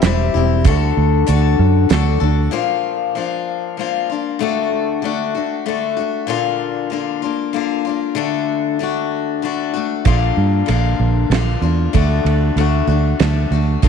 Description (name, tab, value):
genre	folk rock and heartland rock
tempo	95 BPM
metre	3/4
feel	straight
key	unclear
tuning	A4 = 440 Hz
part	picked steel-string acoustic guitar	accompaniment	0.0-13.9 s	Bb2 to A4	-18 LUFS	left 9 dB	none
part	fingered electric bass	bass	0.0-2.5, 10.1-13.9 s	E1 to G2	-15 LUFS	right 2 dB	none
part	damped 70s drum kit	drums	0.0-2.0, 10.1-13.9 s	hi-hat, kick drum, ride cymbal, snare drum	-19 LUFS	right 5 dB	none
room	light reverb, studio reverb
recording	1960s-style stereo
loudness	-15 LUFS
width	side -6 dB against mid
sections	0.0-2.5 A section; 2.5-13.9 B section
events	none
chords	0.0 C/E; 0.7 D; 2.5 Bb; 4.4 D; 6.3 Bb; 8.2 D; 10.1 Bb; 12.0 D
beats	0.03 | 0.65 1.27 1.90 | 2.53 3.15 3.78 | 4.41 5.04 5.67 | 6.29 6.92 7.55 | 8.18 8.81 9.44 | 10.07 10.70 11.32 | 11.95 12.58 13.21 | 13.84